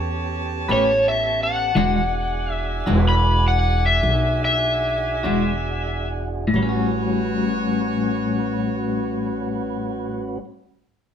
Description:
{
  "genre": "slow blues",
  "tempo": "44-56 BPM (dotted quarters)",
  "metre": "12/8",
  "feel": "straight",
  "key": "A major",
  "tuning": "A4 = 438 Hz",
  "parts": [
    { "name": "tonewheel organ", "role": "sustained chords", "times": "0.0-10.4 s", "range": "B3 to B4", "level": "-30 LUFS", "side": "right 1 dB", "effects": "slow rotary speaker, overdrive" },
    { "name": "warm horn section", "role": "sustained chords", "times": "0.0-10.4 s", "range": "F#4 to A5", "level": "-30 LUFS", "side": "right 2 dB", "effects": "none" },
    { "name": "upright bass", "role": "bass", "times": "0.0-10.4 s", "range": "E1 to E2", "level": "-24 LUFS", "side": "right 1 dB", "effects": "none" },
    { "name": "overdriven slide guitar", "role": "melody", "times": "0.7-6.1 s", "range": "C#5 to B5", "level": "-21 LUFS", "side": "left 1 dB", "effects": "none" },
    { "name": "clean electric guitar", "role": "accompaniment", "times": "0.7-10.6 s", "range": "A2 to B4", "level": "-22 LUFS", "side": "left 3 dB", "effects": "tremolo" }
  ],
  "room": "moderate studio reverb, RT60 0.8 s",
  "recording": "band playing live in one room",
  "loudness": "-19 LUFS",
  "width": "side -8 dB against mid",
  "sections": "0.0-6.5 A section; 6.5-11.1 B section",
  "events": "electric slide guitar solo 0.0-6.5; slowing down 0.3-6.5",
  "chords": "0.0 A9; 1.8 E9; 6.5 A13"
}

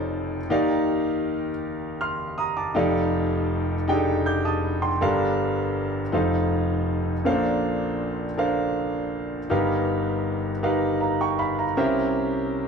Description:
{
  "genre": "gospel",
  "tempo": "53 BPM (dotted quarters)",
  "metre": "6/8",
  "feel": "straight",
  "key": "Bb major",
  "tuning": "A4 = 440 Hz",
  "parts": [
    { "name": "warm concert grand piano", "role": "solo", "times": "0.0-12.7 s", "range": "F1 to G6", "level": "-22 LUFS", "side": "equal", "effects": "none" }
  ],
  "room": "wet studio reverb, RT60 0.8 s",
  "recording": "band playing live in one room",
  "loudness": "-22 LUFS",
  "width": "side -6 dB against mid",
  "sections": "0.0-12.7 A section",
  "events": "none",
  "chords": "0.5 Ebmaj9; 2.7 F13; 5.0 Gm9; 6.1 F7; 7.3 Bbmaj9; 9.5 G7alt; 11.8 C7b9"
}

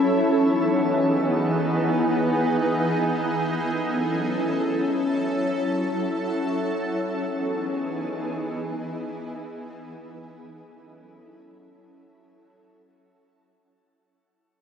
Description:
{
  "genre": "hip hop",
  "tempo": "free time",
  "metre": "none",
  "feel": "none",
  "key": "E major",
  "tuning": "A4 = 440 Hz",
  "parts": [
    { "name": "shimmering ambient pad", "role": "solo", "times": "0.0-13.7 s", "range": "E3 to A4", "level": "-22 LUFS", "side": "equal", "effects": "chorus, built-in reverb" }
  ],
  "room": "wet shimmer reverb, RT60 4.7 s",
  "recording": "nothing above 10.5 kHz",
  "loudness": "-22 LUFS",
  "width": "side -7 dB against mid",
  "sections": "0.1-13.8 A section",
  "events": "fade-out 0.1-13.8",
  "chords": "0.1 Emaj7; 3.5 F#m7; 6.9 Emaj7; 10.3 F#m7"
}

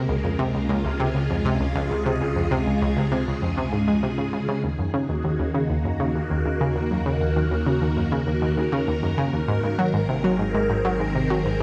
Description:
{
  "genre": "ambient, sequencer-driven space music",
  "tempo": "99 BPM",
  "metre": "4/4",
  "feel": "straight",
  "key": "Eb dorian",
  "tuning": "A4 = 441 Hz",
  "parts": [
    { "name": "phased string machine", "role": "sustained chords", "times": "0.0-11.6 s", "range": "Db3 to Bb4", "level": "-27 LUFS", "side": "equal", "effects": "ensemble chorus, phaser" },
    { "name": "analog pluck", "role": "riff", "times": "0.0-11.6 s", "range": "Db2 to Ab3", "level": "-26 LUFS", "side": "equal", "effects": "chorus, tape echo" },
    { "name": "round analog bass", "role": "bass", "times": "0.0-11.6 s", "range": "Ab1 to Eb2", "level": "-34 LUFS", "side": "equal", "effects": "none" }
  ],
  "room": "moderate plate reverb, RT60 2.8 s",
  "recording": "none",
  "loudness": "-23 LUFS",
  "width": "mono",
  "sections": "0.0-11.6 A section",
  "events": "none",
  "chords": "0.0 Db; 4.6 Ebm; 9.5 Abadd9"
}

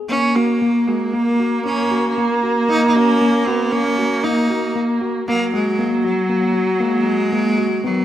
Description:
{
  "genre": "contemporary instrumental, chamber music in an uneven meter",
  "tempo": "116 BPM",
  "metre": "5/4",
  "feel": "straight",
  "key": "unclear",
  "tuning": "A4 = 445 Hz",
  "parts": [
    { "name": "tine electric piano", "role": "arpeggios", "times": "0.0-8.0 s", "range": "A#3 to F#4", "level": "-21 LUFS", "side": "left 2 dB", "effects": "fast stereo tremolo" },
    { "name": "bright cello", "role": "melody", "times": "0.1-8.0 s", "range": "F#3 to D#4", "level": "-20 LUFS", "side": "right 1 dB", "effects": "none" },
    { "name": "rich viola", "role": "second line", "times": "0.1-8.0 s", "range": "D#3 to A#3", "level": "-19 LUFS", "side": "right 2 dB", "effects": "none" }
  ],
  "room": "wet scoring stage reverb, RT60 1.5 s",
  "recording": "none",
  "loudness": "-15 LUFS",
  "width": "side -12 dB against mid",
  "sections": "0.0-8.0 A section",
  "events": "none",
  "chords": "0.1 D#m7/G# (rootless)"
}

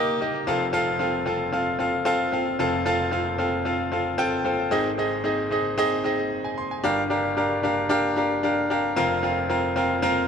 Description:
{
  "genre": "pop",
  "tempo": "113 BPM",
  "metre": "4/4",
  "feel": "straight",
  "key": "unclear",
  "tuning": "A4 = 441 Hz",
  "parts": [
    { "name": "bright grand piano", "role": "solo", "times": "0.0-10.3 s", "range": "F1 to C6", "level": "-22 LUFS", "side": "equal", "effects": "ping-pong delay" }
  ],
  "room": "moderate plate reverb, RT60 3.5 s",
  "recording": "dark, warm production",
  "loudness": "-22 LUFS",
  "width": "side -7 dB against mid",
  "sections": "0.0-4.7 A section; 4.7-10.3 B section",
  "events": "none",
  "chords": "0.5 F; 4.7 Ab; 6.8 Gm7; 9.0 Fsus4"
}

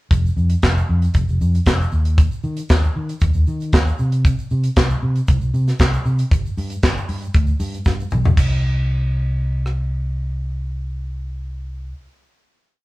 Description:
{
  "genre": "disco",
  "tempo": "116 BPM",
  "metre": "4/4",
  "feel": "straight",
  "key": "C minor",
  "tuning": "A4 = 440 Hz",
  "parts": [
    { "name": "fingered electric bass", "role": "bass", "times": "0.1-11.9 s", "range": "F1 to Eb3", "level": "-19 LUFS", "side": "equal", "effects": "none" },
    { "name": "tight funk drum kit", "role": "drums", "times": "0.1-9.8 s", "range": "crash cymbal, handclaps, hi-hat, kick drum, rim click, snare drum, toms", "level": "-17 LUFS", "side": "equal", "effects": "none" },
    { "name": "egg shaker", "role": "percussion", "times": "0.1-8.6 s", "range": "none", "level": "-46 LUFS", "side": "right 2 dB", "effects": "none" }
  ],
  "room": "moderate studio reverb, RT60 0.6 s",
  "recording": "band playing live in one room, cassette tape",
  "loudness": "-16 LUFS",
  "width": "side -19 dB against mid",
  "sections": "0.1-8.4 breakdown; 8.4-12.5 final note",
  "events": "drum fill 7.9-8.4",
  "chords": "none"
}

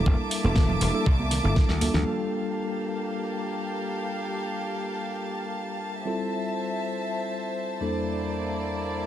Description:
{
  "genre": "nu-disco, nu disco",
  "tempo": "120 BPM",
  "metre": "4/4",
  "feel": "straight",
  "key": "G dorian",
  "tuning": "A4 = 441 Hz",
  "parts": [
    { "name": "mellow tine electric piano", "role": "accompaniment", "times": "0.0-9.1 s", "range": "E2 to A4", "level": "-30 LUFS", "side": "left 1 dB", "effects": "medium stereo tremolo, sidechain pumping, dub echo" },
    { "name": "warm chamber violin section", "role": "sustained chords", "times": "0.0-9.1 s", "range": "Bb3 to D6", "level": "-31 LUFS", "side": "equal", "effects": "sidechain pumping" },
    { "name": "dry thumbed slap bass", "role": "bass", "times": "0.1-2.0 s", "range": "E1 to D2", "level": "-26 LUFS", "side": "equal", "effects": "none" },
    { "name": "electronic kick drum", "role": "drums", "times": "0.1-1.7 s", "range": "none", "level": "-22 LUFS", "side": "equal", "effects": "small room ambience" },
    { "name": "pop drum kit", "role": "drums", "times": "0.3-2.2 s", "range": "crash cymbal, hi-hat, snare drum", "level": "-30 LUFS", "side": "equal", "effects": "low-pass filter on hats, small room ambience, low-pass filter on snare, low-pass filter on cymbals" },
    { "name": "congas", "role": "percussion", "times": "0.4-2.0 s", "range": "none", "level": "-33 LUFS", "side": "right 2 dB", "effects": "none" }
  ],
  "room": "light reverb, digital ambience",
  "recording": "none",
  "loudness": "-25 LUFS",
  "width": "side -11 dB against mid",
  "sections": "0.0-2.1 A section; 2.1-9.1 B section",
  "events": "drum fill 1.3-2.1",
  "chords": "0.0 C13/E; 2.1 Gm9; 6.1 Fmaj7; 7.8 C13/E"
}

